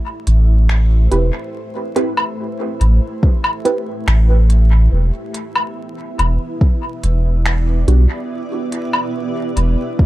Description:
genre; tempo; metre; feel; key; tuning
ambient dub; 71 BPM; 4/4; straight; A minor; A4 = 440 Hz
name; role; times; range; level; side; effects
granular cloud pad; sustained chords; 0.0-10.1 s; A3 to E5; -26 LUFS; right 1 dB; built-in reverb
soft dub sub bass; bass; 0.3-9.8 s; E1 to B1; -12 LUFS; equal; none
organic electronic drum kit; drums; 0.3-9.7 s; finger snaps, hi-hat, woodblock; -22 LUFS; left 1 dB; dub echo
filtered dub chord stab; stabs; 1.1-8.0 s; G3 to B4; -22 LUFS; right 3 dB; wide subtle chorus, dub echo
electronic kick drum; drums; 3.2-10.1 s; none; -13 LUFS; equal; overdrive
room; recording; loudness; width
little or no reverb; echo-heavy mix, vinyl crackle; -14 LUFS; side -16 dB against mid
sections
0.0-10.1 A section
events
fade-in on ambient pad 0.0-10.1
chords
0.0 Am7; 4.9 Em7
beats
0.69 | 1.54 2.38 3.23 4.08 | 4.92 5.76 6.61 7.46 | 8.30 9.14 9.99

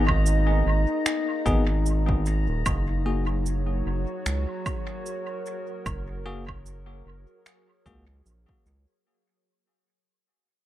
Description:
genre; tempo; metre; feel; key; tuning
ambient dub; 75 BPM; 4/4; swing 56% on 16ths; unclear; A4 = 439 Hz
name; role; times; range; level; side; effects
warbly tape-like pad; sustained chords; 0.0-9.1 s; F#3 to D#5; -31 LUFS; left 1 dB; chorus, built-in reverb
bell-like tine electric piano; stabs; 0.0-8.0 s; A#3 to G#4; -32 LUFS; left 3 dB; fast stereo tremolo, dub echo
round analog bass; bass; 0.0-8.9 s; D#1 to C#2; -25 LUFS; equal; tube saturation
bubbling stepped-filter texture; texture; 0.0-9.1 s; A#3 to A#5; -37 LUFS; left 1 dB; chorus, built-in reverb
electronic kick drum; drums; 0.1-8.6 s; none; -29 LUFS; equal; overdrive
electronic woodblock, cabasa and finger snaps; drums; 0.1-8.8 s; none; -32 LUFS; right 2 dB; dub echo
room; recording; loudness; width
digital ambience; none; -23 LUFS; side -14 dB against mid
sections
0.0-9.1 A section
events
fade-out 0.5-9.1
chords
0.0 G#5; 2.7 F#add9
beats
0.26 1.06 1.86 | 2.66 3.46 4.26 5.06 | 5.86 6.66 7.46 8.26

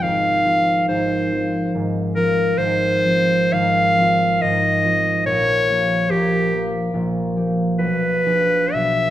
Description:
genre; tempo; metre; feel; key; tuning
classical, romantic duo for clarinet and harp; 70 BPM; 3/4; uneven beats, rubato; F minor; A4 = 439 Hz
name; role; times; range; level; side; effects
bright clarinet; melody; 0.0-9.1 s; G4 to F5; -18 LUFS; left 1 dB; none
concert harp; accompaniment; 0.0-9.1 s; Ab1 to G#4; -20 LUFS; right 1 dB; none
room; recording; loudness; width
wet scoring stage reverb, RT60 1.5 s; none; -16 LUFS; side -12 dB against mid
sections
0.0-9.1 A section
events
none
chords
0.0 Fm/Ab; 5.3 Gm7b5/Bb; 7.8 Bdim7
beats
| 0.03 0.89 1.75 | 2.59 3.54 4.42 | 5.26 6.11 6.95 | 7.79 8.74

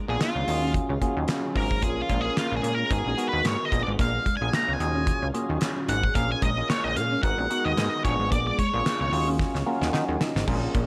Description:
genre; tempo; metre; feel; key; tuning
early-eighties boogie funk; 111 BPM; 4/4; swing 56% on 16ths; Eb minor; A4 = 440 Hz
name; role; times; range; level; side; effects
soft string machine; sustained chords; 0.0-10.9 s; Bb2 to F5; -40 LUFS; equal; none
mellow electric guitar; riff; 0.0-10.9 s; Ab3 to Eb4; -36 LUFS; equal; analog chorus
octave-fuzz lead guitar; melody; 0.1-9.3 s; F4 to Bb5; -31 LUFS; equal; distortion
overdriven tine electric piano; accompaniment; 0.1-10.9 s; Cb4 to Bb5; -33 LUFS; equal; phaser
plucky analog bass; bass; 0.1-10.9 s; Ab1 to Eb3; -31 LUFS; equal; none
damped 70s drum kit; drums; 0.2-10.9 s; crash cymbal, handclaps, hi-hat, kick drum, snare drum; -31 LUFS; equal; gated reverb
room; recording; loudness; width
small room ambience; none; -25 LUFS; mono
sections
0.0-10.5 A section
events
lead electric guitar solo 0.0-10.5; drum fill 9.4-10.5; tine electric piano fill 9.4-10.5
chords
0.5 Ebm11; 1.8 Bbm7; 2.9 Abm9; 3.7 Bb7b9; 4.8 Ebm11; 6.2 Bbm7; 7.2 Abm9; 8.0 Bb7b9; 9.1 Ebm11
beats
0.21 0.75 1.29 | 1.83 2.37 2.91 3.45 | 3.99 4.53 5.07 5.61 | 6.15 6.69 7.23 7.77 | 8.31 8.85 9.39 9.94 | 10.48

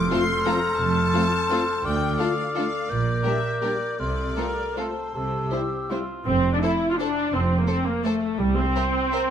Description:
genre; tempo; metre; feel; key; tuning
classical, orchestral ballroom waltz; 150-188 BPM; 3/4; rubato; F major; A4 = 441 Hz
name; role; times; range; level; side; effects
clear studio violin section; melody; 0.0-9.2 s; C5 to D6; -32 LUFS; left 4 dB; none
mellow cor anglais; second line; 0.0-6.3 s; F4 to D5; -29 LUFS; equal; none
mellow silver concert flute; second line; 0.0-6.0 s; E6 to G6; -32 LUFS; left 3 dB; none
warm clarinet; second line; 0.0-6.0 s; G4 to Bb4; -30 LUFS; left 3 dB; none
clear studio cello section; bass; 0.0-8.7 s; C2 to C3; -30 LUFS; right 3 dB; none
warm studio double bass section; bass; 0.0-8.7 s; F1 to D2; -28 LUFS; right 3 dB; none
rich studio violin section; second line; 0.1-9.2 s; E4 to C5; -34 LUFS; left 2 dB; none
warm studio viola section; accompaniment; 0.1-9.3 s; G3 to F4; -25 LUFS; equal; none
mellow French horn section; sustained chords; 0.1-6.0 s; G3 to G4; -31 LUFS; left 4 dB; none
room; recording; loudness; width
moderate scoring stage reverb, RT60 1.6 s; none; -21 LUFS; side -9 dB against mid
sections
0.0-6.3 A section; 6.3-9.3 B section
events
none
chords
0.0 F; 1.8 Dm; 2.9 Gm/Bb; 4.0 F/C; 5.1 C; 6.3 F; 8.4 C5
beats
0.11 0.46 | 0.79 1.14 1.50 | 1.84 2.19 2.56 | 2.89 3.24 3.62 | 3.99 4.37 4.77 | 5.14 5.52 5.90 | 6.26 6.62 7.00 | 7.34 7.69 8.05 | 8.40 8.76 9.13

